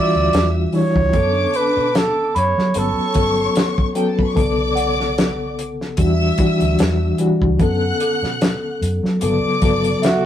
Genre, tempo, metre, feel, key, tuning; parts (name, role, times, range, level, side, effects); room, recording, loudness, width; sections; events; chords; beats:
lush 1970s-style soul; 74 BPM; 4/4; swing 54% on 16ths; B minor; A4 = 440 Hz
warm flugelhorn; melody; 0.0-3.6, 10.1-10.3 s; F#4 to D5; -19 LUFS; right 2 dB
warm studio string section; second line; 0.0-10.3 s; D4 to F#6; -25 LUFS; equal
reed electric piano; accompaniment; 0.0-10.3 s; C#3 to A4; -20 LUFS; left 2 dB; fast tremolo
vintage muted fingered electric bass; bass; 0.1-9.9 s; G1 to F#3; -22 LUFS; equal
warm soul drum kit; drums; 0.3-10.2 s; hi-hat, kick drum, snare drum; -20 LUFS; equal
celesta; texture; 2.3-10.3 s; A4 to B5; -25 LUFS; right 1 dB
moderate studio reverb, RT60 0.6 s; rough rehearsal-room recording; -15 LUFS; side -10 dB against mid
0.0-10.3 A section
0.0 Em9; 1.1 Bm9/F#; 2.8 Gmaj9#11; 4.4 Bm9; 6.0 Em9; 7.6 Bm9/F#; 9.2 Gmaj9#11
0.33 | 1.14 1.95 2.76 3.56 | 4.37 5.18 5.99 6.80 | 7.60 8.41 9.22 10.03